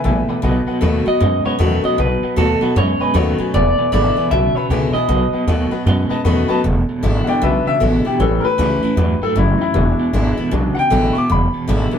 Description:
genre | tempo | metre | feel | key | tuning
rockabilly | 155 BPM | 4/4 | swing 63% on 8ths | E major | A4 = 441 Hz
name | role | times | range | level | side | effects
bright upright piano | accompaniment | 0.0-12.0 s | F#3 to D6 | -21 LUFS | left 4 dB | none
picked steel-string acoustic guitar | accompaniment | 0.0-12.0 s | E2 to F#4 | -22 LUFS | left 3 dB | none
electric guitar at the edge of break-up | riff | 0.0-12.0 s | E2 to G#3 | -22 LUFS | right 3 dB | tremolo
upright bass | bass | 0.0-12.0 s | E1 to F#2 | -18 LUFS | equal | none
electric guitar through a small old amp | melody | 1.1-6.2 s | A4 to E5 | -19 LUFS | right 1 dB | none
room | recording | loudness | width
moderate studio reverb, RT60 0.8 s | band playing live in one room | -14 LUFS | side -8 dB against mid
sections
0.0-6.6 A section; 6.6-12.0 B section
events
upright piano fill 0.0-0.4, 5.5-6.6; upright piano solo 6.6-12.0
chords
0.4 B7; 3.5 E7; 5.1 B7; 6.6 E7; 8.2 A7; 9.7 E7

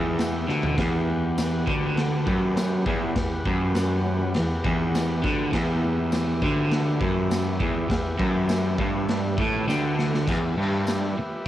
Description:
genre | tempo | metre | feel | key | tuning
garage rock duo or trio | 101 BPM | 4/4 | straight | E minor | A4 = 440 Hz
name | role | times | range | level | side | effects
overdriven combo organ | sustained chords | 0.0-11.5 s | G4 to A5 | -34 LUFS | left 1 dB | cassette tape
crunchy overdriven guitar | riff | 0.0-11.2 s | E2 to D3 | -24 LUFS | equal | cassette tape
warm baritone saxophone | bass | 0.0-11.3 s | D2 to A2 | -30 LUFS | equal | none
raw garage drum kit | drums | 0.2-11.5 s | crash cymbal, kick drum, snare drum, toms | -28 LUFS | equal | cassette tape
tambourine | percussion | 0.2-11.0 s | none | -42 LUFS | left 4 dB | none
room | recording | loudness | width
light reverb | home recording on cassette | -22 LUFS | side -12 dB against mid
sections
0.0-10.3 A section; 10.3-11.5 B section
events
drum fill 0.5, 9.7-10.3; transistor combo organ fill 9.1-10.3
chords
0.0 Em

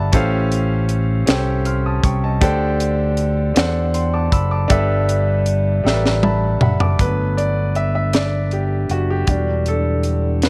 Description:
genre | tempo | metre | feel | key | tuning
slow gospel | 52 BPM (dotted quarters) | 6/8 | straight | G major | A4 = 438 Hz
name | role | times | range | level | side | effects
clear grand piano | accompaniment | 0.0-10.5 s | G2 to E#6 | -23 LUFS | equal | none
fingered electric bass | bass | 0.0-10.5 s | E1 to E2 | -21 LUFS | equal | none
tight funk drum kit | drums | 0.1-10.5 s | hi-hat, kick drum, snare drum, toms | -20 LUFS | equal | none
mellow French horn section | sustained chords | 7.0-10.5 s | D3 to E4 | -32 LUFS | equal | none
room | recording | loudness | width
little or no reverb | none | -18 LUFS | mono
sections
0.0-7.0 A section; 7.0-10.5 B section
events
drum fill 5.8-7.0; grand piano fill 5.8-7.0; grand piano solo 7.0-10.5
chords
0.1 A7alt; 2.4 D7sus4; 4.7 G69; 7.0 Gmaj7; 9.3 Em7

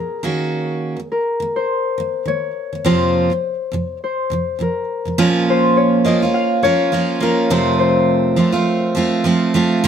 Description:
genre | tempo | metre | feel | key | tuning
pop | 103 BPM | 4/4 | swing 55% on 16ths | Bb minor | A4 = 440 Hz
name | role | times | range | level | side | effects
Celtic harp | melody | 0.0-9.8 s | Ab4 to F5 | -19 LUFS | left 5 dB | none
picked steel-string acoustic guitar | accompaniment | 0.0-9.9 s | F2 to Gb4 | -16 LUFS | right 4 dB | none
room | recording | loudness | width
little or no reverb | close, detailed microphones | -15 LUFS | side -8 dB against mid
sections
0.0-5.2 A section; 5.2-9.9 B section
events
none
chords
0.2 Ebm7; 2.9 Fsus4; 5.2 Bbm; 7.5 F

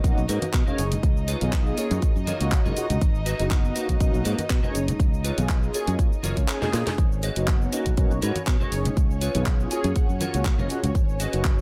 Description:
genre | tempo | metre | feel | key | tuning
filtered disco house | 121 BPM | 4/4 | swing 54% on 16ths | unclear | A4 = 440 Hz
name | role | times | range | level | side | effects
mellow synth brass | accompaniment | 0.0-11.6 s | A#3 to C#5 | -34 LUFS | equal | chorus, phaser, sidechain pumping
dark chamber string section | sustained chords | 0.0-11.6 s | C#4 to D#5 | -37 LUFS | equal | sidechain pumping
clean electric guitar | riff | 0.0-11.5 s | E#4 to G#5 | -36 LUFS | equal | analog chorus, sidechain pumping
modern bright fingered electric bass | bass | 0.0-11.6 s | F#1 to B2 | -29 LUFS | equal | sidechain pumping
electronic kick drum | drums | 0.0-11.6 s | none | -25 LUFS | equal | none
house drum kit | drums | 0.0-11.6 s | handclaps, hi-hat, shaker, snare drum | -35 LUFS | equal | sidechain pumping on hats, sidechain pumping on perc
maracas and congas | percussion | 0.0-11.6 s | none | -36 LUFS | equal | none
analog synth brass | melody | 0.7-10.9 s | F#4 to C#5 | -37 LUFS | equal | chorus, sidechain pumping, digital delay
room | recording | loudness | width
digital ambience | none | -24 LUFS | mono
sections
0.0-11.6 A section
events
kick drops out 6.5-7.0; drum fill 6.6-7.0; clean electric guitar fill 9.5-11.0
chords
0.0 Bmaj7; 1.0 C#7; 1.8 F#maj7; 3.0 G#m7; 3.8 Bmaj7; 5.0 C#7; 5.7 F#maj7; 7.0 G#m7; 7.7 Bmaj7; 9.0 C#7; 9.7 F#maj7; 11.0 G#m7

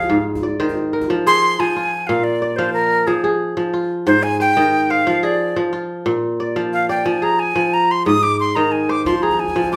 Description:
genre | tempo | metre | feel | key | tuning
west african traditional, West African string and xylophone music | 121 BPM (dotted quarters) | 12/8 | straight | F dorian | A4 = 440 Hz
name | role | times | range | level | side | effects
breathy bright jazz flute | melody | 0.0-9.8 s | Ab4 to Eb6 | -19 LUFS | equal | none
kora | arpeggios | 0.0-9.8 s | Ab2 to F5 | -21 LUFS | equal | none
djembe | percussion | 0.0-1.1, 9.1-9.7 s | none | -30 LUFS | equal | none
room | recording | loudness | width
moderate large studio reverb, RT60 0.8 s | band playing live in one room | -18 LUFS | mono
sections
0.0-1.1 A section; 1.1-9.8 B section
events
flute solo 1.1-9.8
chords
0.1 Ab; 1.1 Fm; 2.1 Bb; 3.1 Fm; 4.1 Ab; 5.1 Fm; 6.1 Bb; 7.1 Fm; 8.1 Ab; 9.1 Fm

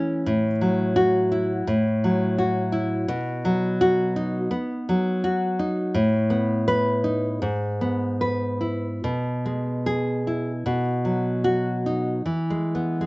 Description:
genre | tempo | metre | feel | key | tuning
romantic piece for solo classical guitar | 70-89 BPM | 4/4 | rubato | E major | A4 = 439 Hz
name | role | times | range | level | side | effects
nylon-string guitar | solo | 0.0-13.1 s | G#2 to B4 | -21 LUFS | equal | none
room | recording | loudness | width
light reverb | recorded outdoors, with no room sound, nothing above 7.9 kHz | -21 LUFS | side -22 dB against mid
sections
0.0-12.3 A section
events
none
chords
0.3 F#m7/A; 3.1 B; 6.0 B7/A; 7.4 E/G#; 9.0 E/B; 10.7 B; 12.3 E

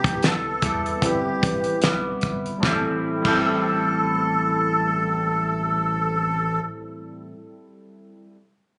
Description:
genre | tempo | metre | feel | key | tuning
indie pop, bedroom pop | 75 BPM | 4/4 | swing 55% on 16ths | A minor | A4 = 440 Hz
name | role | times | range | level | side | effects
melodica | melody | 0.0-6.6 s | G4 to A4 | -26 LUFS | equal | ensemble chorus, slapback echo
electric guitar with an envelope filter | accompaniment | 0.0-7.3 s | A2 to E4 | -29 LUFS | equal | subtle chorus, warbly pitch drift
warbly lo-fi synth keys | accompaniment | 0.0-8.4 s | G3 to B4 | -32 LUFS | equal | chorus
round analog bass | bass | 0.0-6.6 s | G1 to E2 | -33 LUFS | equal | none
damped 70s drum kit | drums | 0.0-3.5 s | crash cymbal, hi-hat, kick drum, snare drum | -26 LUFS | equal | none
room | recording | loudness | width
light reverb, studio ambience | recorded on a phone in the room, club reverb, nothing above 10.7 kHz | -23 LUFS | mono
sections
0.0-2.6 A section; 2.6-5.8 B section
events
none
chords
0.0 Cmaj7; 2.6 Am7

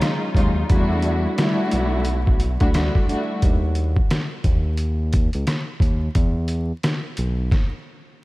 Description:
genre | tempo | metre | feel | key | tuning
hip hop, boom-bap hip-hop | 88 BPM | 4/4 | swing 61% on 16ths | unclear | A4 = 440 Hz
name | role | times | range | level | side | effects
dark studio string section | accompaniment | 0.0-3.4 s | Gb3 to F#4 | -23 LUFS | left 1 dB | cassette tape, high-pass filter, low-pass filter
trip hop sampler-style drum kit | drums | 0.0-7.7 s | hi-hat, kick drum, rim click, snare drum | -20 LUFS | equal | none
smooth synth bass | bass | 0.3-7.5 s | B1 to E2 | -22 LUFS | equal | none
room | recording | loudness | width
light reverb | vinyl crackle | -18 LUFS | side -20 dB against mid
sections
0.0-8.2 A section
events
none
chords
0.0 Ebm11; 0.7 Em11; 3.4 N.C.; 6.2 E5

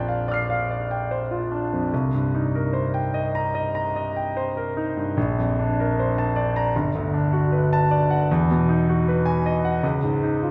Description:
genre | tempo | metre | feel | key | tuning
classical, impressionist solo piano | 72-79 BPM | 4/4 | rubato | Bb major | A4 = 440 Hz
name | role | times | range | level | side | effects
clear concert grand piano | solo | 0.0-10.5 s | G1 to C7 | -23 LUFS | equal | none
room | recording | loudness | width
wet scoring stage reverb, RT60 1.5 s | heard from further back in the room | -23 LUFS | mono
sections
0.0-10.5 A section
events
none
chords
0.0 Bb69; 1.9 Cm7; 5.2 Bbmaj9; 6.7 Gmaj9; 8.3 Emaj9; 9.8 Dbadd9

